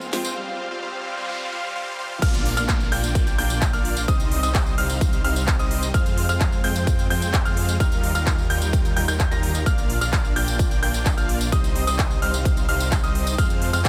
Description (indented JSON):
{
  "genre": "EDM, festival progressive house",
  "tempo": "129 BPM",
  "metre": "4/4",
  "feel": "straight",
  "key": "C minor",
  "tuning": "A4 = 440 Hz",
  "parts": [
    { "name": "dense compressed supersaw", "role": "riff", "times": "0.0-13.9 s", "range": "G3 to Bb5", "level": "-30 LUFS", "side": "equal", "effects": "sidechain pumping, tape echo" },
    { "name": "detuned saw bass", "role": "bass", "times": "0.0-13.9 s", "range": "Bb1 to F2", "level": "-28 LUFS", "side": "equal", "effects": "sidechain pumping" },
    { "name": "big-room dance drum kit", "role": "drums", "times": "0.0-13.9 s", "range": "crash cymbal, handclaps, hi-hat, snare drum, tambourine", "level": "-31 LUFS", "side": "equal", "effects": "overdrive, studio reverb" },
    { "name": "riser, noise sweep and downlifter", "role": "sound effects", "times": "0.0-5.9 s", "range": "none", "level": "-37 LUFS", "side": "equal", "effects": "none" },
    { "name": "bright baby grand piano", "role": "arpeggios", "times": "2.2-13.9 s", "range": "Eb6 to Bb6", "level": "-31 LUFS", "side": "equal", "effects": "sidechain pumping, tape echo" },
    { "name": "electronic kick drum", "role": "drums", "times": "2.2-13.9 s", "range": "none", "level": "-24 LUFS", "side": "equal", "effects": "overdrive, high-pass filter on kick, studio reverb" }
  ],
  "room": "little or no reverb",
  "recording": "high-pass filter",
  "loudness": "-22 LUFS",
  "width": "mono",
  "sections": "0.0-2.2 A section; 2.2-13.9 B section",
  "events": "build-up 0.0-2.2; drum fill 0.0-0.4; noise sweep 0.4-2.2; drop 2.2-13.9",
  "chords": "0.4 G7sus4; 2.2 Bb; 4.1 Cm; 5.9 Fm; 7.8 Ebadd9; 9.7 Bb; 11.5 Cm; 13.4 Fm"
}